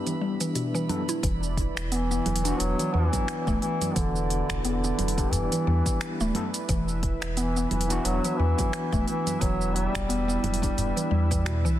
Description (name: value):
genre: organic downtempo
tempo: 88 BPM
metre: 4/4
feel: swing 57% on 16ths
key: E minor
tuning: A4 = 439 Hz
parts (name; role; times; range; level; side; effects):
- overdriven tine electric piano; accompaniment; 0.0-11.3 s; E3 to A4; -34 LUFS; left 3 dB; medium tremolo, sidechain pumping, digital delay
- warm analog pad; sustained chords; 0.0-11.8 s; G3 to E5; -37 LUFS; right 3 dB; chorus, sidechain pumping
- drifting glass-harmonics texture; texture; 0.0-1.2 s; B5; -45 LUFS; right 7 dB; chorus, built-in reverb
- mallet-like synth pluck; arpeggios; 0.1-11.8 s; B2 to E4; -31 LUFS; equal; chorus, cassette tape, digital delay
- organic electronic drum kit; drums; 0.1-11.8 s; cabasa, congas, finger snaps, hi-hat; -33 LUFS; right 2 dB; soft clipping on snare
- warm sub bass; bass; 1.2-11.8 s; D1 to E2; -28 LUFS; equal; tube saturation, sidechain pumping
- electronic kick drum; drums; 1.2-11.4 s; none; -29 LUFS; equal; none
- mellow duduk; melody; 1.9-11.8 s; D3 to G3; -30 LUFS; equal; digital delay
- udu; percussion; 3.5-10.9 s; none; -33 LUFS; left 1 dB; none
room: light reverb, digital ambience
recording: dense, heavily limited modern master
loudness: -24 LUFS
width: side -12 dB against mid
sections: 0.0-1.2 A section; 1.2-11.8 B section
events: filter sweep on drum 0.0-1.2; filter sweep on tine electric piano 0.0-1.2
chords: 0.0 Em7